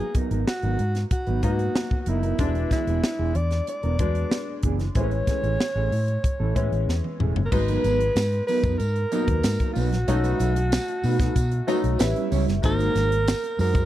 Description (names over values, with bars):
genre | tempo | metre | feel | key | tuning
polished 1980s jazz-funk pop | 94 BPM | 4/4 | straight | unclear | A4 = 437 Hz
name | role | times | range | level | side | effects
breathy alto saxophone | melody | 0.0-13.9 s | E4 to D5 | -28 LUFS | right 1 dB | none
clear baby grand piano | accompaniment | 0.0-13.9 s | E3 to E4 | -30 LUFS | left 3 dB | analog chorus
mellow electric guitar | riff | 0.0-13.9 s | E3 to C#5 | -30 LUFS | right 4 dB | lush chorus
crisp fusion drum kit | drums | 0.1-13.9 s | crash cymbal, hi-hat, kick drum, snare drum, toms | -26 LUFS | equal | none
vintage muted fingered electric bass | bass | 0.3-13.9 s | E1 to B2 | -24 LUFS | equal | none
tambourine | percussion | 7.5-13.9 s | none | -44 LUFS | right 4 dB | none
room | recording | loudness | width
little or no reverb | dry, close 1970s-style studio recording | -21 LUFS | side -13 dB against mid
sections
0.0-7.5 A section; 7.5-13.9 B section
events
drum fill 6.9-7.5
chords
0.0 G#m9; 2.4 E7; 5.0 Amaj7; 7.5 G#m9; 10.1 B7; 12.0 A9; 12.6 G#7